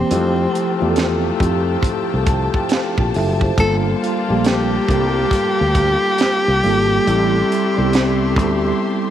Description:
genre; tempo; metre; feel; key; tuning
R&B, neo-soul; 69 BPM; 4/4; swing 62% on 16ths; G dorian; A4 = 441 Hz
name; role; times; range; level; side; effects
breathy tenor saxophone; melody; 0.0-9.1 s; C4 to A4; -19 LUFS; equal; none
mellow tine electric piano; accompaniment; 0.0-9.1 s; E3 to A5; -20 LUFS; right 1 dB; medium stereo tremolo
warm symphonic string section; sustained chords; 0.0-9.1 s; G4 to C6; -28 LUFS; left 2 dB; none
warm horn section; stabs; 0.1-9.1 s; C3 to F4; -28 LUFS; left 12 dB; none
fretless electric bass; bass; 0.1-8.7 s; F#1 to F2; -20 LUFS; equal; none
tight funk drum kit; drums; 0.1-8.6 s; hi-hat, kick drum, snare drum; -21 LUFS; right 2 dB; none
room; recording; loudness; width
moderate plate reverb, RT60 2.7 s; 1960s-style stereo, vinyl crackle; -15 LUFS; side -10 dB against mid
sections
0.0-9.1 A section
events
tine electric piano fill 1.8-3.6; break 8.8-9.1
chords
0.1 Fmaj9; 3.6 Gm9; 7.1 Am7

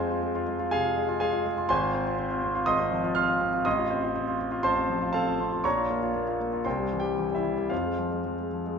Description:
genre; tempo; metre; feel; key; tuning
classical, virtuoso piano study; 120 BPM; 4/4; uneven beats, rubato; F minor; A4 = 443 Hz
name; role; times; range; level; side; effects
warm concert grand piano; solo; 0.0-8.8 s; Ab1 to F6; -25 LUFS; equal; none
room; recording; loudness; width
moderate recital hall reverb, RT60 1.5 s; nothing above 7.7 kHz; -25 LUFS; side -6 dB against mid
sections
0.0-8.8 A section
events
none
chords
0.0 Fm; 1.7 Fm/Ab; 3.7 F7/A; 5.6 Bbm; 6.7 C; 7.7 Fm

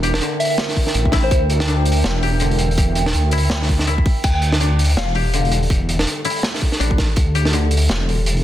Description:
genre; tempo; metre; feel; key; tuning
half-time drum and bass; 164 BPM; 4/4; swing 59% on 16ths, half-time; unclear; A4 = 442 Hz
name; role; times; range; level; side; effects
dark analog pad; sustained chords; 0.0-8.4 s; D4 to G5; -27 LUFS; right 3 dB; chorus, phaser, sidechain pumping
koto; arpeggios; 0.0-8.4 s; D3 to G4; -26 LUFS; left 5 dB; ping-pong delay
deep soft wobble bass; bass; 0.0-8.4 s; E1 to D2; -18 LUFS; equal; chorus
crunchy breakbeat drum kit; drums; 0.0-8.4 s; crash cymbal, hi-hat, snare drum; -22 LUFS; right 1 dB; none
soft synth bell; melody; 0.4-1.4, 4.2-5.5 s; C5 to G5; -25 LUFS; left 2 dB; chorus, phaser, ping-pong delay
electronic kick drum; drums; 0.8-7.3 s; none; -18 LUFS; equal; none
room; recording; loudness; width
small room ambience; dense, heavily limited modern master; -15 LUFS; side -12 dB against mid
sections
0.0-8.4 A section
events
none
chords
0.0 C7 (rootless); 4.2 Fadd9 (rootless)

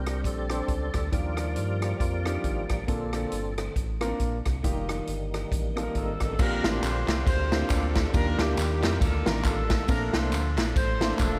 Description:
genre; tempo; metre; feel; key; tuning
uptempo gospel; 137 BPM; 4/4; swing 58% on 8ths; Bb major; A4 = 440 Hz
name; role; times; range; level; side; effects
tonewheel organ; sustained chords; 0.0-11.4 s; Db3 to D5; -37 LUFS; equal; slow rotary speaker, overdrive, chorus vibrato
round analog bass; bass; 0.0-11.4 s; E1 to G2; -32 LUFS; equal; none
swinging big-band drum kit; drums; 0.1-11.3 s; crash cymbal, hi-hat, kick drum, ride cymbal, rim click, snare drum; -31 LUFS; equal; none
warm concert grand piano; accompaniment; 0.5-11.4 s; Bb2 to C5; -35 LUFS; equal; none
warm horn section; melody; 6.0-11.4 s; Bb3 to C5; -34 LUFS; equal; none
tambourine and handclaps; percussion; 6.4-11.3 s; none; -40 LUFS; equal; none
room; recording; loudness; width
light reverb; none; -27 LUFS; mono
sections
0.0-6.4 A section; 6.4-11.4 B section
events
tonewheel organ solo 0.0-6.4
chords
0.0 Bb69; 1.1 Ebmaj9; 2.9 Bbmaj7; 4.6 F9sus4; 6.4 Bb69; 8.1 Ebmaj9; 9.9 Bbmaj7

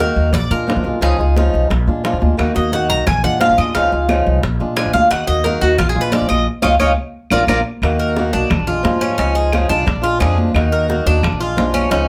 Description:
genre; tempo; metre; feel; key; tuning
latin, Cuban son and guajira; 176 BPM; 4/4; straight; unclear; A4 = 440 Hz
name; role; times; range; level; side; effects
fingerpicked swing-style acoustic guitar; accompaniment; 0.0-12.1 s; Db3 to Gb4; -22 LUFS; equal; none
Cuban tres; arpeggios; 0.0-12.1 s; Db4 to Bb5; -20 LUFS; equal; none
upright bass; bass; 0.0-12.1 s; Bb1 to Bb2; -20 LUFS; equal; none
bongos; percussion; 0.0-12.1 s; none; -28 LUFS; equal; none
congas; percussion; 0.2-12.1 s; none; -26 LUFS; equal; none
claves; percussion; 2.4-11.9 s; none; -30 LUFS; equal; none
room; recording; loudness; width
moderate studio reverb, RT60 0.6 s; heard from further back in the room; -16 LUFS; mono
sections
0.0-7.8 A section; 7.8-12.1 B section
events
Cuban tres solo 0.0-7.8; band accent 6.5-7.8; drum fill 7.3-7.8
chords
0.3 Bb7; 1.0 Dbadd9; 1.7 Bb7; 2.4 Ebm; 3.1 Bb7; 3.8 Dbadd9; 4.4 Bb7; 5.1 Ebm; 5.8 Bb7; 6.5 Dbadd9; 7.2 Bb; 7.8 Ebm; 8.5 Bb7; 9.2 Dbadd9; 9.9 Bb7; 10.6 Ebm; 11.2 Bb7

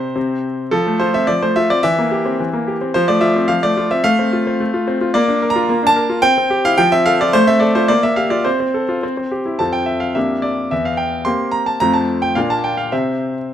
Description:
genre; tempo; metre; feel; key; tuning
classical-period piano sonatina; 108 BPM; 2/4; straight; F major; A4 = 440 Hz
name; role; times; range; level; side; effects
bright concert grand piano; solo; 0.0-13.5 s; E2 to C6; -14 LUFS; equal; none
room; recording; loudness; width
light reverb; close, detailed microphones; -14 LUFS; side -10 dB against mid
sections
0.7-9.6 A section; 9.6-13.5 B section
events
none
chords
0.0 N.C.; 0.7 F; 1.8 C7/E; 2.9 F; 4.0 F/A; 5.2 Bb; 6.2 C; 6.8 F; 7.3 F/A; 7.9 Gm7/Bb; 8.5 F/C; 9.0 C; 9.6 F; 10.2 Gm7/F; 10.7 C7/E; 11.8 F; 12.4 Bb; 12.9 N.C.

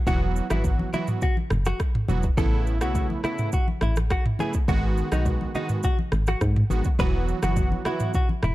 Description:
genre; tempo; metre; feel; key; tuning
afrobeats; 104 BPM; 4/4; straight; E major; A4 = 440 Hz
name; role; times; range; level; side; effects
direct-recorded clean electric guitar; melody; 0.1-8.5 s; D#4 to B4; -31 LUFS; left 1 dB; lush chorus, tape echo
warm analog keys; accompaniment; 0.1-8.1 s; C#3 to F#4; -29 LUFS; right 3 dB; chorus
solid FM bass; bass; 0.1-8.5 s; E1 to G#2; -24 LUFS; equal; none
afro-pop drum kit; drums; 0.1-8.5 s; kick drum, rim click, shaker, toms; -25 LUFS; equal; none
congas; percussion; 0.1-8.4 s; none; -34 LUFS; left 3 dB; none
room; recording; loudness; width
digital ambience; dark, warm production; -22 LUFS; side -17 dB against mid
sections
0.0-8.5 A section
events
none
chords
0.0 Esus2; 2.4 Aadd9; 4.7 G#m7; 7.0 Esus2

